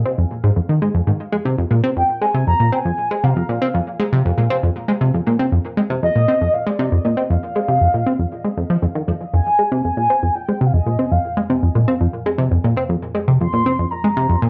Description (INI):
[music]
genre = ambient, sequencer-driven space music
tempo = 118 BPM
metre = 4/4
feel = straight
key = F dorian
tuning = A4 = 440 Hz
[part]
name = mellow horn-like synth lead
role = melody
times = 0.0-14.5 s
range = D5 to C6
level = -24 LUFS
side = equal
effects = chorus, cassette tape, tape echo
[part]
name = plucky analog bass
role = riff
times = 0.0-14.5 s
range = F2 to C4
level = -19 LUFS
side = equal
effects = cassette tape, tape echo
[part]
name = analog drone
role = bass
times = 11.0-14.5 s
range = F2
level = -37 LUFS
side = equal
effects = none
[sound]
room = wet studio ambience, RT60 0.5 s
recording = home recording on cassette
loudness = -18 LUFS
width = mono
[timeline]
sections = 0.0-9.3 A section; 9.3-14.5 B section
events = none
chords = 0.0 F5